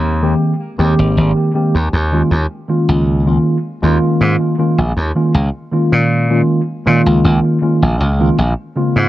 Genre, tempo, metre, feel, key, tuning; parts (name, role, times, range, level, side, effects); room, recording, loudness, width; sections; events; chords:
vaporwave; 79 BPM; 4/4; straight; A4 = 441 Hz
mellow tine electric piano; accompaniment; 0.0-9.1 s; Db3 to G4; -14 LUFS; equal; slow stereo tremolo, wide subtle chorus, tape echo
slap bass; bass; 0.0-9.1 s; Ab1 to Bb2; -14 LUFS; equal
moderate recital hall reverb, RT60 1.6 s, studio reverb; cassette tape; -12 LUFS; side -15 dB against mid
0.0-5.3 A section; 5.3-9.1 B section
0.0 Abmaj9; 1.9 Db69; 8.4 Bbm9